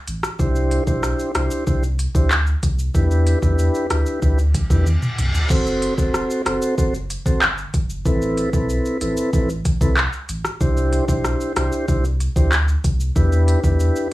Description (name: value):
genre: dancehall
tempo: 94 BPM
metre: 4/4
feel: straight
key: unclear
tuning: A4 = 440 Hz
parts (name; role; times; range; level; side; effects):
- warm sub bass; bass; 0.1-13.9 s; E1 to E2; -20 LUFS; equal; none
- afro-pop drum kit; drums; 0.1-14.1 s; crash cymbal, handclaps, hi-hat, kick drum, rim click, shaker, toms; -20 LUFS; equal; none
- mellow tonewheel organ; accompaniment; 0.4-14.1 s; C4 to C5; -22 LUFS; equal; slow rotary speaker
- reverse cymbal; sound effects; 4.6-5.5 s; none; -28 LUFS; left 1 dB; none
room: light reverb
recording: dry, gritty hardware recording, transformer saturation, small room ambience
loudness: -17 LUFS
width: side -17 dB against mid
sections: 0.0-5.5 A section; 5.5-14.1 B section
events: reverse cymbal 4.6-5.5; drum fill 4.9-5.5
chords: 0.4 Cadd9; 2.9 Em7; 5.5 F#dim; 8.1 Amadd9; 10.6 Cadd9; 13.2 Em7